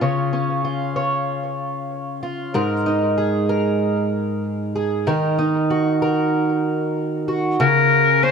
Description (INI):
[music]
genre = folktronica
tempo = 95 BPM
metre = 4/4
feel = straight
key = unclear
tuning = A4 = 439 Hz
[part]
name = fingerpicked twelve-string acoustic guitar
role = arpeggios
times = 0.0-8.3 s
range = Ab2 to Db5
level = -19 LUFS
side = equal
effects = low-pass filter, tape echo
[part]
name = clear clarinet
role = melody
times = 7.6-8.3 s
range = Bb4 to C5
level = -14 LUFS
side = left 2 dB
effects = none
[sound]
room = light reverb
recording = none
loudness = -18 LUFS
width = side -6 dB against mid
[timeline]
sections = 0.0-7.6 A section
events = none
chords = 0.0 Db; 2.5 Absus2; 5.1 Ebm; 7.6 N.C.